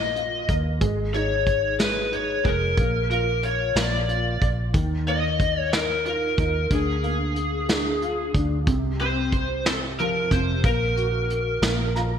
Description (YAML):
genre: six-eight pop ballad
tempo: 61 BPM (dotted quarters)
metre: 6/8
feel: straight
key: unclear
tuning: A4 = 440 Hz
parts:
  - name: lead guitar through a small cranked amp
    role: melody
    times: 0.0-11.9 s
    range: Ab4 to Eb5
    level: -25 LUFS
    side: left 2 dB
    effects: overdrive, analog chorus
  - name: felt-muted upright piano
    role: accompaniment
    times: 0.0-12.2 s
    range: C3 to Bb5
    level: -29 LUFS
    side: equal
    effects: ensemble chorus
  - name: vintage muted fingered electric bass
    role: bass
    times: 0.0-12.2 s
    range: F1 to Eb2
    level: -27 LUFS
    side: equal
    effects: none
  - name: vintage brush drum kit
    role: drums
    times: 0.2-12.1 s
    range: hi-hat, kick drum, snare drum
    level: -25 LUFS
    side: equal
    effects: gated reverb
room: moderate lush hall reverb, RT60 2.2 s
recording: bright 1980s-style digital production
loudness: -21 LUFS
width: side -8 dB against mid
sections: 0.0-12.2 A section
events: felt piano fill 11.6-12.2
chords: 0.0 Bbsus4; 0.8 Ab5; 2.8 Bb5; 4.7 Ebsus2; 6.7 Bb/D; 8.7 F5/C; 10.6 Gb/Bb; 11.6 Bb5